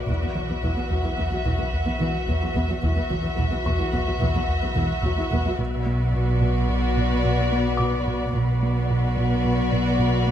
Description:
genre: cinematic, suspense film score.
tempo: 109 BPM.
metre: 5/4.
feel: straight.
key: B minor.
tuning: A4 = 435 Hz.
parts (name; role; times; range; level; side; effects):
rich studio violin section; melody; 0.0-10.3 s; D5 to E5; -32 LUFS; left 5 dB; none.
warm studio violin section; second line; 0.0-10.3 s; F#4; -31 LUFS; left 3 dB; none.
wind-like tuned noise texture; sustained chords; 0.0-10.3 s; B4 to F#5; -34 LUFS; right 1 dB; built-in reverb.
punchy sub bass; drone; 0.0-10.3 s; B1; -30 LUFS; equal; none.
dark grand piano; texture; 0.0-10.3 s; C#6 to D6; -36 LUFS; left 3 dB; none.
dark studio viola section; accompaniment; 0.1-10.3 s; E3 to B3; -30 LUFS; equal; none.
rubbery square bass; riff; 0.1-10.3 s; E2 to B3; -27 LUFS; right 1 dB; none.
dark studio double bass section; bass; 0.1-10.3 s; E1 to B1; -28 LUFS; right 2 dB; none.
rich studio cello section; bass; 0.1-10.3 s; E2 to B2; -29 LUFS; right 1 dB; none.
room: light reverb.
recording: close, detailed microphones.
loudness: -21 LUFS.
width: side -10 dB against mid.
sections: 0.0-10.3 A section.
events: none.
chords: 0.1 Esus2; 5.6 Bm.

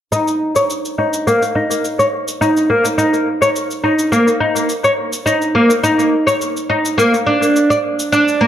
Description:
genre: organic downtempo.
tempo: 105 BPM.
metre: 4/4.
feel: straight.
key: unclear.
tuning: A4 = 440 Hz.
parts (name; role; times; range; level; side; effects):
oud; arpeggios; 0.1-8.5 s; Bb3 to D5; -13 LUFS; equal; low-pass filter, analog delay.
shaker; drums; 0.1-8.4 s; none; -26 LUFS; equal; none.
room: wet spring reverb, RT60 1.3 s, small room ambience.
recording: echo-heavy mix.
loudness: -13 LUFS.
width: side -10 dB against mid.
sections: 0.1-8.5 A section.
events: filter sweep on oud 0.1-8.5.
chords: none.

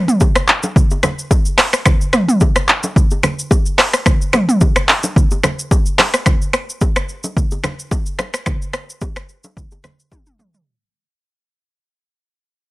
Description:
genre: afrobeats.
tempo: 109 BPM.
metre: 4/4.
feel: swing 55% on 16ths.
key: none.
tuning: none.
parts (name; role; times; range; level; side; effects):
deep house drum kit; drums; 0.1-10.7 s; finger snaps, handclaps, hi-hat, kick drum, rim click, shaker, toms; -13 LUFS; equal; overdrive.
bongos and congas; percussion; 0.2-10.5 s; none; -22 LUFS; equal; none.
room: little or no reverb.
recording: dry, gritty hardware recording.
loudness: -13 LUFS.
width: side -19 dB against mid.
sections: 0.0-6.3 A section; 6.3-10.7 B section.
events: fade-out 6.3-10.7; drum fill 10.1-10.7.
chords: none.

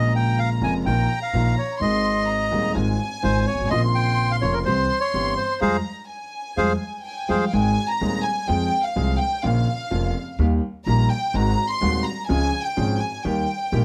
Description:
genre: tango.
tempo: 126 BPM.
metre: 4/4.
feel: rubato.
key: F minor, Ab major from 7.5 s.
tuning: A4 = 442 Hz.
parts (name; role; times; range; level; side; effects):
bandoneon; melody; 0.0-7.5 s; Ab4 to Ab5; -26 LUFS; equal; none.
warm studio violin section; second line; 0.0-13.8 s; F5 to C6; -29 LUFS; equal; none.
clear baby grand piano; accompaniment; 0.0-13.8 s; Eb1 to Ab4; -27 LUFS; equal; none.
upright bass; bass; 0.0-13.8 s; F1 to F2; -26 LUFS; equal; none.
room: light reverb.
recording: none.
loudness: -22 LUFS.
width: mono.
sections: 0.0-7.5 A section; 7.5-13.8 B section.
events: band accent 5.6-7.5; violin section solo 7.5-13.8.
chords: 0.0 Bbm7; 0.9 Ebsus2/Bb; 1.8 Ab; 2.8 Fm7/Ab; 3.7 Bbmadd9; 4.7 C; 5.6 Fmadd9; 7.5 Ab; 8.5 Fm; 9.4 Bbm; 10.4 Eb; 11.3 Ab7; 12.3 Db; 13.2 Eb.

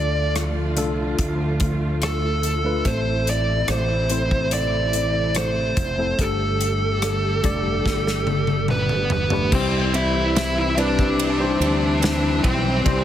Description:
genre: pop ballad.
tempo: 72 BPM.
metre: 4/4.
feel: straight.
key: C major.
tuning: A4 = 440 Hz.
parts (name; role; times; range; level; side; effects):
fuzz lead guitar; melody; 0.0-13.0 s; B3 to E5; -23 LUFS; equal; distortion.
tine electric piano; accompaniment; 0.0-13.0 s; G2 to D5; -26 LUFS; left 3 dB; medium stereo tremolo.
warm studio string section; sustained chords; 0.0-13.0 s; C3 to G4; -30 LUFS; right 3 dB; none.
fretless electric bass; bass; 0.0-13.0 s; F1 to D2; -25 LUFS; equal; none.
modern studio drum kit; drums; 0.4-13.0 s; crash cymbal, hi-hat, kick drum, ride cymbal, rim click, snare drum, toms; -25 LUFS; equal; none.
bright studio cello section; second line; 9.5-13.0 s; E3 to C4; -28 LUFS; left 1 dB; ping-pong delay.
room: light reverb, studio ambience.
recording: heavily compressed radio sound, multiband compression.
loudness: -19 LUFS.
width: side -11 dB against mid.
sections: 0.0-9.5 A section; 9.5-13.0 B section.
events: drum fill 7.9-9.5.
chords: 0.0 Dm; 2.9 Am; 6.2 Gsus2; 9.5 C.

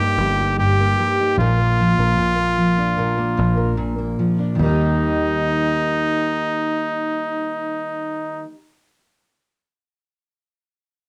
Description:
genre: acoustic pop.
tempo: 75 BPM.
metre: 4/4.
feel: straight.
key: Eb major.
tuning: A4 = 440 Hz.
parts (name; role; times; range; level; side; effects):
bright trumpet; melody; 0.0-8.4 s; Eb4 to G4; -23 LUFS; equal; none.
fingerpicked steel-string acoustic guitar; accompaniment; 0.0-8.6 s; G2 to Bb4; -23 LUFS; equal; cassette tape.
fingered electric bass; bass; 0.0-8.4 s; G1 to Eb2; -26 LUFS; equal; transformer saturation.
room: light reverb.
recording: home recording on cassette.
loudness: -20 LUFS.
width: mono.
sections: 0.0-4.6 A section; 4.6-7.8 B section.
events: none.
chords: 0.0 Eb/G; 1.4 Bb; 4.6 Eb.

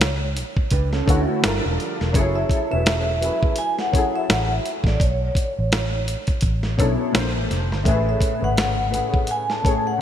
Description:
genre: R&B, neo-soul.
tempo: 84 BPM.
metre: 4/4.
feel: swing 58% on 16ths.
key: A major.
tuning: A4 = 440 Hz.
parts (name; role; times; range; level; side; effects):
vibraphone with medium mallets; melody; 0.0-10.0 s; C#5 to A5; -25 LUFS; equal; none.
vintage muted fingered electric bass; bass; 0.0-9.0 s; E1 to D2; -23 LUFS; equal; none.
dusty soul sampler-style drum kit; drums; 0.0-9.8 s; hi-hat, kick drum, snare drum; -22 LUFS; equal; none.
electric guitar through a small old amp; second line; 0.7-2.1 s; F3 to B4; -29 LUFS; right 8 dB; none.
warm concert grand piano; accompaniment; 1.1-10.0 s; A2 to C#5; -24 LUFS; left 3 dB; ensemble chorus.
room: moderate lush hall reverb, RT60 2.9 s.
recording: bright 1980s-style digital production.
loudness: -18 LUFS.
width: side -10 dB against mid.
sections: 0.0-10.0 A section.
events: none.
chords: 0.0 Dmaj9; 1.4 Gm7; 2.1 F#m7; 5.0 Bm11; 7.1 Bbmaj7; 7.9 Amaj7.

